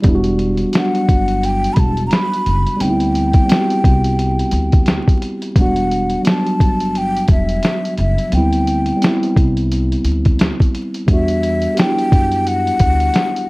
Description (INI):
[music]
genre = lo-fi hip hop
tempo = 87 BPM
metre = 4/4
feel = swing 60% on 16ths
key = E minor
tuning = A4 = 438 Hz
[part]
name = mellow tine electric piano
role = accompaniment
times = 0.0-13.5 s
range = F#3 to G4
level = -18 LUFS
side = equal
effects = cassette tape
[part]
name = upright bass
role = bass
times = 0.0-13.1 s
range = E1 to F#2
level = -19 LUFS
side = equal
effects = none
[part]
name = lo-fi sampler-style drum kit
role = drums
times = 0.0-13.5 s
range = hi-hat, kick drum, snare drum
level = -15 LUFS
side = equal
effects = none
[part]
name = breathy mellow concert flute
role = melody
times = 0.8-13.5 s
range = E5 to B5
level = -20 LUFS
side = left 1 dB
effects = none
[sound]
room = light reverb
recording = vinyl crackle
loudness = -13 LUFS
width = side -23 dB against mid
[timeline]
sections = 0.0-13.5 A section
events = none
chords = 0.0 Em9; 2.8 D13sus4; 5.6 Em9; 8.3 D13sus4; 11.1 Em9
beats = | 0.04 0.73 1.42 2.11 | 2.80 3.49 4.18 4.87 | 5.56 6.25 6.94 7.63 | 8.32 9.01 9.70 10.39 | 11.08 11.77 12.46 13.14